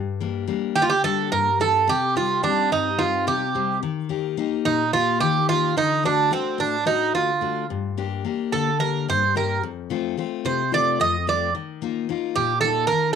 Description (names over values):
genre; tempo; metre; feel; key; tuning
greek folk, Greek bouzouki band; 218 BPM (eighths); 7/8; straight; G minor; A4 = 440 Hz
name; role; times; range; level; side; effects
picked steel-string acoustic guitar; accompaniment; 0.0-13.2 s; F2 to G4; -25 LUFS; left 10 dB; cassette tape
Greek bouzouki; melody; 0.8-13.2 s; C4 to Eb5; -20 LUFS; right 5 dB; none
room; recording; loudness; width
wet studio ambience, RT60 0.5 s; home recording on cassette; -20 LUFS; side -7 dB against mid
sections
0.0-13.2 A section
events
speeding up 0.0-13.2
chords
0.0 Gm; 1.9 Cm; 3.8 Eb; 5.8 D; 7.7 Gm; 9.6 F; 11.5 Ebsus2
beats
0.21 0.49 0.77 1.05 1.33 1.61 | 1.88 2.16 2.44 2.72 3.00 3.27 3.55 | 3.83 4.11 4.38 4.66 4.94 5.21 5.49 | 5.77 6.04 6.32 6.60 6.87 7.15 7.42 | 7.70 7.97 8.25 8.52 8.80 9.07 9.34 | 9.62 9.89 10.17 10.44 10.71 10.98 11.26 | 11.53 11.80 12.07 12.35 12.62 12.89